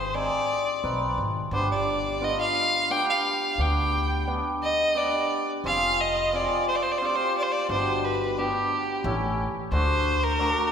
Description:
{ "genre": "klezmer", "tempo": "88 BPM", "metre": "3/4", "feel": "straight", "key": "G phrygian dominant", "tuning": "A4 = 441 Hz", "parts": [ { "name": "rich violin", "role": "melody", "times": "0.0-10.7 s", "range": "G4 to G5", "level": "-25 LUFS", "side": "equal", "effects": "none" }, { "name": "upright bass", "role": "bass", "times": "0.0-10.5 s", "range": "F1 to D2", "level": "-30 LUFS", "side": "equal", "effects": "none" }, { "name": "cimbalom", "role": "accompaniment", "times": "0.1-10.7 s", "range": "B2 to B4", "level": "-27 LUFS", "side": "equal", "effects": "none" } ], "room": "wet concert hall reverb, RT60 2.0 s", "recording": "recorded in a church or concert hall", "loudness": "-23 LUFS", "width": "side -7 dB against mid", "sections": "0.0-9.7 A section; 9.7-10.7 B section", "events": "none", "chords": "0.0 Ab; 1.5 G; 5.6 Fm; 7.7 G; 9.0 A7; 9.7 D" }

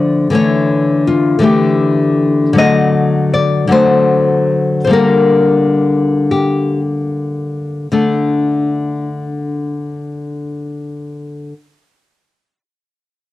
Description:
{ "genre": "romantic piece for solo classical guitar", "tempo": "34-56 BPM (dotted quarters)", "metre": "6/8", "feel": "rubato", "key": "unclear", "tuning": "A4 = 440 Hz", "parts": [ { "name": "nylon-string guitar", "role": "solo", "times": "0.0-11.5 s", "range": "D3 to Eb5", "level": "-12 LUFS", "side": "left 2 dB", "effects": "cassette tape" } ], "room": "moderate studio reverb, RT60 0.5 s", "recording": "home recording on cassette", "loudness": "-11 LUFS", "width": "side -15 dB against mid", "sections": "0.0-7.9 A section; 7.9-13.3 B section", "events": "slowing down 1.4-7.9", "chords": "0.3 A7/D; 2.6 D7; 4.9 Gm/D; 7.9 D5" }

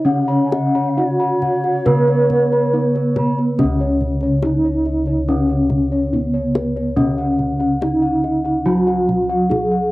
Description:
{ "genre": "Javanese gamelan", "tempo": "71 BPM", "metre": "4/4", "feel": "straight", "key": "Db slendro", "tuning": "A4 = 442 Hz", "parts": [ { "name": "gamelan-type bronze metallophone", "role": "melody", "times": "0.0-9.9 s", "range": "Cb4-45c to Cb5-45c", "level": "-18 LUFS", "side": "equal", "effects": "plate reverb" }, { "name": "gamelan-type bronze metallophone", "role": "accompaniment", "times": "0.0-9.9 s", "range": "Db3 to Cb4-45c", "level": "-24 LUFS", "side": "right 1 dB", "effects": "cassette tape" }, { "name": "gamelan-type bronze metallophone", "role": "arpeggios", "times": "0.0-3.6 s", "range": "Cb5-45c to Cb6-45c", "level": "-25 LUFS", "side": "right 2 dB", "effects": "cassette tape, plate reverb, analog delay" }, { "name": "gamelan-type bossed gongs", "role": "bass", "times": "0.0-9.9 s", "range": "Db2 to Eb4+30c", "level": "-21 LUFS", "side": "left 1 dB", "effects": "none" }, { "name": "gamelan-type bossed gongs", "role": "arpeggios", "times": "0.1-9.9 s", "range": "Cb5-45c to Cb6-45c", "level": "-25 LUFS", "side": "left 1 dB", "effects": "cassette tape, plate reverb" }, { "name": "mellow hollow bansuri", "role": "second line", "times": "0.4-3.4 s", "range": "Db5 to Ab5+22c", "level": "-27 LUFS", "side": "left 3 dB", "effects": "cassette tape, plate reverb" }, { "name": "kendang", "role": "percussion", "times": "0.5-9.7 s", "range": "none", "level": "-25 LUFS", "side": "left 2 dB", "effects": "none" } ], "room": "moderate small room reverb, RT60 0.5 s", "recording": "home recording on cassette", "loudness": "-15 LUFS", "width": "side -18 dB against mid", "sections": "0.0-3.6 A section; 3.6-9.9 B section", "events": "none", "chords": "none" }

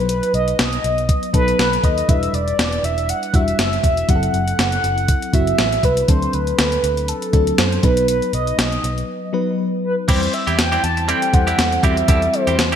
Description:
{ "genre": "1980s-style pop", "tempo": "120 BPM", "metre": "4/4", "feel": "swing 55% on 16ths", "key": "unclear", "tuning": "A4 = 440 Hz", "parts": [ { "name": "mellow horn-like synth lead", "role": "melody", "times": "0.0-12.8 s", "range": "A4 to A5", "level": "-20 LUFS", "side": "right 1 dB", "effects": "chorus, phaser" }, { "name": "FM electric piano with auto-pan", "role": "accompaniment", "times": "0.0-12.8 s", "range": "F#3 to C5", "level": "-24 LUFS", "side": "left 1 dB", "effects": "phaser" }, { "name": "vintage muted picked electric bass", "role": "bass", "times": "0.0-12.8 s", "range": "E1 to F#2", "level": "-23 LUFS", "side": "equal", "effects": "none" }, { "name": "clean 12-bit digital drum machine", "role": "drums", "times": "0.1-12.8 s", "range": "crash cymbal, hi-hat, kick drum, snare drum", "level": "-19 LUFS", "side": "equal", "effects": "gated reverb" }, { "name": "direct-recorded clean electric guitar", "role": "riff", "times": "10.1-12.8 s", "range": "G3 to G4", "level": "-23 LUFS", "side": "right 3 dB", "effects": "wide subtle chorus" }, { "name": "mellow synth brass", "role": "stabs", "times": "11.1-12.8 s", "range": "E3 to A4", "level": "-26 LUFS", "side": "left 2 dB", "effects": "chorus" } ], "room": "moderate lush hall reverb, RT60 1.7 s, digital ambience", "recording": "bright 1980s-style digital production", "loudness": "-15 LUFS", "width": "side -8 dB against mid", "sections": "0.0-10.1 A section; 10.1-12.8 B section", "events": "break 9.1-10.1", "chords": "0.0 B; 2.1 Em7; 4.1 F#m7b5; 6.1 D7; 7.8 B; 10.1 C/E" }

